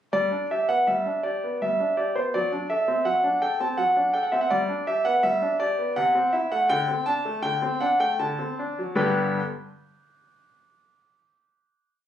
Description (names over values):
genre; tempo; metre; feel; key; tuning
classical-period piano sonatina; 81 BPM; 3/4; uneven beats; G major; A4 = 435 Hz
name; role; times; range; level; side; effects
bright concert grand piano; solo; 0.1-9.4 s; G2 to A5; -22 LUFS; equal; none
room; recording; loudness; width
little or no reverb; recorded on a phone in the room, club reverb, compression; -22 LUFS; side -10 dB against mid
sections
0.1-9.0 theme; 9.0-11.3 final chord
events
none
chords
0.1 G; 2.3 D7/F#; 4.5 G; 6.0 Am/C; 6.7 D5; 8.2 D7; 9.0 G